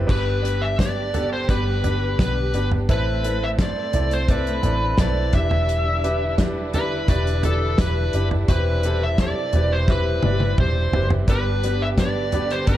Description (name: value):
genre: piano-driven pop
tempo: 86 BPM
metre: 4/4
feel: straight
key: G major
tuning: A4 = 440 Hz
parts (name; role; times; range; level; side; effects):
- clear baby grand piano; accompaniment; 0.0-12.8 s; G2 to D5; -27 LUFS; right 1 dB; none
- vintage muted fingered electric bass; bass; 0.0-12.8 s; E1 to C2; -23 LUFS; equal; none
- smooth overdriven lead guitar; melody; 0.1-12.8 s; A4 to E5; -25 LUFS; left 1 dB; none
- warm studio string section; sustained chords; 0.1-12.8 s; C3 to G4; -32 LUFS; right 1 dB; none
- natural country drum kit; drums; 0.1-12.8 s; crash cymbal, hi-hat, kick drum, snare drum, toms; -22 LUFS; equal; none
room: light reverb, studio reverb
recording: dark, warm production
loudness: -18 LUFS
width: side -13 dB against mid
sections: 0.1-12.8 A section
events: drum fill 9.9-11.3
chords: 0.1 G; 2.9 Amadd9; 5.3 Em7; 8.5 Cmaj7/E; 11.3 G